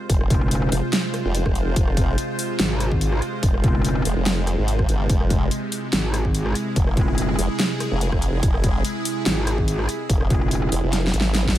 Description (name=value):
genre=heavy wobble dubstep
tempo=144 BPM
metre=4/4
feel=swing 54% on 16ths, half-time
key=F harmonic minor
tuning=A4 = 439 Hz
part: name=evolving wavetable pad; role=sustained chords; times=0.0-11.6 s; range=C3 to C5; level=-27 LUFS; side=right 1 dB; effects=phaser, built-in reverb, sidechain pumping
part: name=formant-sweep wobble bass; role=bass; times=0.1-11.6 s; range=F1 to Ab1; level=-22 LUFS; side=equal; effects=chorus, overdrive
part: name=dubstep drum kit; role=drums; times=0.1-11.6 s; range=hi-hat, rim click, snare drum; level=-26 LUFS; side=equal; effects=none
part: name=electronic kick drum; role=drums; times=0.1-11.5 s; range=none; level=-21 LUFS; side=equal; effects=none
part: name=metallic wobble bass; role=bass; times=0.3-10.7 s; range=F1 to Ab1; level=-22 LUFS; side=equal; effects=chorus, overdrive
room=light reverb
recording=none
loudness=-19 LUFS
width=side -13 dB against mid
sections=0.0-11.6 A section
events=drum fill 10.9-11.6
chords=0.0 Fm